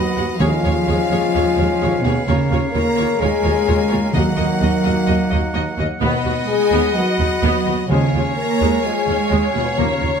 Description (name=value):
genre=cinematic, heroic adventure film score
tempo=128 BPM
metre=4/4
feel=straight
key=unclear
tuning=A4 = 440 Hz
part: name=baroque flute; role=second line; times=0.0-10.2 s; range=Ab5 to B5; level=-29 LUFS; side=left 1 dB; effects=none
part: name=bright symphonic violin section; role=second line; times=0.0-10.2 s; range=Cb5 to Bb5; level=-30 LUFS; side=left 3 dB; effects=none
part: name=clear oboe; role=second line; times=0.0-10.2 s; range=D#5 to F#5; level=-29 LUFS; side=right 2 dB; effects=none
part: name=mellow clarinet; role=second line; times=0.0-10.2 s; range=B4 to Eb5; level=-31 LUFS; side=left 1 dB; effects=none
part: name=dark French horn section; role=sustained chords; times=0.0-10.2 s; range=Cb4 to Bb4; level=-22 LUFS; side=left 6 dB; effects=none
part: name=warm trombone section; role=sustained chords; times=0.0-9.9 s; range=Db3 to B3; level=-28 LUFS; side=right 3 dB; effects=none
part: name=rich symphonic double bass section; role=bass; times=0.0-10.1 s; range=D#2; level=-22 LUFS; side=right 3 dB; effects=none
part: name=warm symphonic cello section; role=bass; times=0.0-10.2 s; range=Cb3 to Bb3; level=-22 LUFS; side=right 2 dB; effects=none
part: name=clear symphonic violin section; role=melody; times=0.2-10.2 s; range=Db5 to F#5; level=-26 LUFS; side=left 3 dB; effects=none
part: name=clear symphonic viola section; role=accompaniment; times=0.2-10.1 s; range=Ab3 to Ab4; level=-26 LUFS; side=right 1 dB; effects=none
part: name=timpani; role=percussion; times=0.4-1.1, 4.1-4.8, 7.9-10.2 s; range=Eb3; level=-24 LUFS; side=right 1 dB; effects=none
room=light reverb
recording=none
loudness=-15 LUFS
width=side -6 dB against mid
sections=0.0-10.2 A section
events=none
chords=0.4 Db/Eb; 2.3 Bbm7/Eb; 4.1 Ebm; 6.0 B/D#; 7.9 Db/Eb